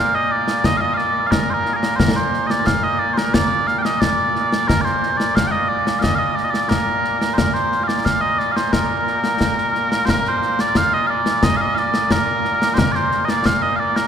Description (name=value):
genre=scottish traditional, Scottish pipe music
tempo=89 BPM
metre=2/4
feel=straight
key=Bb major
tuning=A4 = 441 Hz
part: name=mellow small bagpipes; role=melody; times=0.0-14.1 s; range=Bb2 to G5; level=-18 LUFS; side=right 1 dB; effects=none
part: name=concert snare drum and concert bass drum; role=drums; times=0.5-14.1 s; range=none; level=-20 LUFS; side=left 1 dB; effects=none
room=wet cathedral reverb, RT60 5.6 s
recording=recorded in a church or concert hall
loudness=-16 LUFS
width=side -8 dB against mid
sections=0.0-10.1 A section; 10.1-14.1 A section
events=none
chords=none